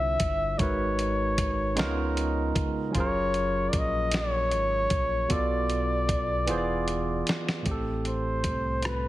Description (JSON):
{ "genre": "slow six-eight R&B", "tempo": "51 BPM (dotted quarters)", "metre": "6/8", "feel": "straight", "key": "unclear", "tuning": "A4 = 440 Hz", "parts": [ { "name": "breathy flugelhorn", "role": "melody", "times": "0.0-9.1 s", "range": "B4 to E5", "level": "-28 LUFS", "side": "left 1 dB", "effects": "slapback echo" }, { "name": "barky tine electric piano", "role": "accompaniment", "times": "0.0-9.1 s", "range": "A2 to D5", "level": "-30 LUFS", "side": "right 2 dB", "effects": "none" }, { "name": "sub bass with octave", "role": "bass", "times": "0.0-9.1 s", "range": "E1 to C#2", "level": "-32 LUFS", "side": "equal", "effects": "none" }, { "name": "dusty soul sampler-style drum kit", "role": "drums", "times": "0.2-9.0 s", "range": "hi-hat, kick drum, rim click, snare drum", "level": "-30 LUFS", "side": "equal", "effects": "none" } ], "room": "light reverb", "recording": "heavily compressed radio sound, multiband compression", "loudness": "-25 LUFS", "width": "side -15 dB against mid", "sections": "0.0-7.7 A section; 7.7-9.1 B section", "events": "drum fill 6.5-7.7", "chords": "0.0 Dm9; 0.6 G#m9; 1.8 C#13; 2.9 F#maj9; 5.3 Bm7b5; 6.5 E7b9; 7.7 Am7", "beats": "| 0.59 1.77 | 2.95 4.12 | 5.30 6.48 | 7.65 8.83" }